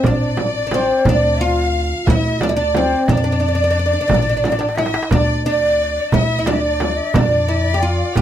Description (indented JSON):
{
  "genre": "Arabic maqam ensemble",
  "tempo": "59 BPM (dotted quarters)",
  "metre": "6/8",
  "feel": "straight",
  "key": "D maqam bayati",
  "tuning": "A4 = 443 Hz",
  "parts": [
    { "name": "oud", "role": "melody", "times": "0.0-8.2 s", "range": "C4 to G4", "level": "-19 LUFS", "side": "right 1 dB", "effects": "none" },
    { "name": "breathy bright ney", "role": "second line", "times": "0.0-8.2 s", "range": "C5 to G5", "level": "-23 LUFS", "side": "left 6 dB", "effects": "none" },
    { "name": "rich studio violin section", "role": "second line", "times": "0.0-8.2 s", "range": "D5 to G5", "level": "-25 LUFS", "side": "left 2 dB", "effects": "none" },
    { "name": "upright bass", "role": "bass", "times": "0.0-8.2 s", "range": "A1 to F2", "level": "-22 LUFS", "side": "left 1 dB", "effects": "none" },
    { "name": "darbuka", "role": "percussion", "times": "0.0-8.2 s", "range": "none", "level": "-21 LUFS", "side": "right 2 dB", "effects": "none" },
    { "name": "frame drum", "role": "percussion", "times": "0.0-8.2 s", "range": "none", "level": "-21 LUFS", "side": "right 3 dB", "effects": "none" }
  ],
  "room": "light reverb",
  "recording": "close, detailed microphones",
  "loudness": "-14 LUFS",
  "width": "side -10 dB against mid",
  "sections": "0.0-8.2 A section",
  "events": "drum fill 4.4-5.1",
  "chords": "none"
}